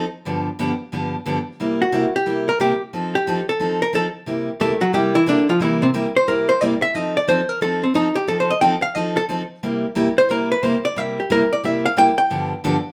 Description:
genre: country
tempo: 179 BPM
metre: 4/4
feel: swing 65% on 8ths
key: C mixolydian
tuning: A4 = 440 Hz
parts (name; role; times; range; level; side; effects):
- picked steel-string acoustic guitar; accompaniment; 0.0-12.8 s; G2 to A4; -24 LUFS; equal; none
- archtop guitar, miked and amplified; melody; 1.8-12.6 s; C3 to G5; -20 LUFS; equal; none
room: moderate studio reverb, RT60 0.7 s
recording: band playing live in one room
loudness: -20 LUFS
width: mono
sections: 0.0-1.6 A section; 1.6-12.9 B section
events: hollow-body jazz guitar solo 1.6-12.9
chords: 0.3 G7; 1.6 C7; 2.9 F7; 4.3 C7; 6.9 F7; 9.6 C7; 12.3 G7

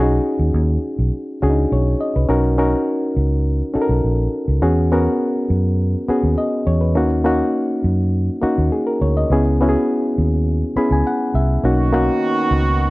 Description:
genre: soul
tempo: 103 BPM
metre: 4/4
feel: straight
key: B major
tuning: A4 = 440 Hz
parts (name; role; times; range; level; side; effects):
- barky reed electric piano; accompaniment; 0.0-12.9 s; A#3 to B5; -18 LUFS; left 1 dB; none
- vintage muted fingered electric bass; bass; 0.0-12.9 s; A#1 to F#2; -18 LUFS; equal; none
- clear horn section; stabs; 11.6-12.9 s; D#3 to F#4; -22 LUFS; right 3 dB; none
room: studio ambience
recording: dry, close 1970s-style studio recording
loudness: -16 LUFS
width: side -20 dB against mid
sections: 0.0-2.3 A section; 2.3-12.9 B section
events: reed electric piano fill 10.5-11.6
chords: 0.0 B6; 2.3 Bmaj7; 4.6 E69; 7.0 D#m7; 9.3 F#9sus4/C#; 11.6 Bmaj7

